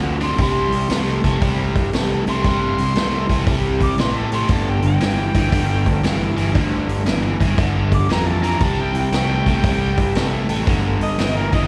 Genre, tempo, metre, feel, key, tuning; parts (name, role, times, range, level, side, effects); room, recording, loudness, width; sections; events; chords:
blues rock power trio and southern rock; 117 BPM; 4/4; swing 66% on 8ths; C major; A4 = 442 Hz
biting overdriven guitar; riff; 0.0-11.7 s; F2 to A3; -24 LUFS; equal; slapback echo
fuzz fingered electric bass; bass; 0.0-11.7 s; G1 to A2; -23 LUFS; equal; overdrive
mellow harmonica; melody; 0.2-11.7 s; Bb4 to D6; -28 LUFS; equal; overdrive
vintage drum kit; drums; 0.2-11.6 s; hi-hat, kick drum, snare drum; -24 LUFS; equal
little or no reverb; live gig heard through the venue's PA, recital hall reverb; -19 LUFS; mono
0.0-11.7 A section
harmonica solo 0.0-11.7
0.4 C5; 4.5 G5; 8.6 C5; 10.7 G5